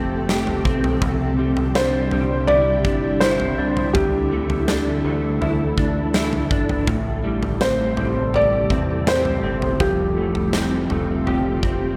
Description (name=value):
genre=dream pop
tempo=82 BPM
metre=4/4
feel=straight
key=A minor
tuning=A4 = 439 Hz
part: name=felt-muted upright piano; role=melody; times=0.0-12.0 s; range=G4 to D5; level=-24 LUFS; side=equal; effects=digital delay
part: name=ethereal airy pad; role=sustained chords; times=0.0-12.0 s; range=C3 to A4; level=-29 LUFS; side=equal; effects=ensemble chorus, built-in reverb, phaser
part: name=electric guitar at the edge of break-up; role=arpeggios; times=0.0-12.0 s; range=A2 to G4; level=-26 LUFS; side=equal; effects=ensemble chorus, digital delay
part: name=deep dub picked electric bass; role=bass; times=0.0-12.0 s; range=F1 to E2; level=-29 LUFS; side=equal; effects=none
part: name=huge arena drum kit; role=drums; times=0.3-11.8 s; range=kick drum, snare drum, toms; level=-27 LUFS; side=equal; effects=none
room=moderate concert hall reverb, RT60 2.3 s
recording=none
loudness=-20 LUFS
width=mono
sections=0.0-12.0 A section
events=none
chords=0.0 Fadd9; 1.0 Cadd9; 3.9 Dsus2; 6.9 Am7; 9.8 Fadd9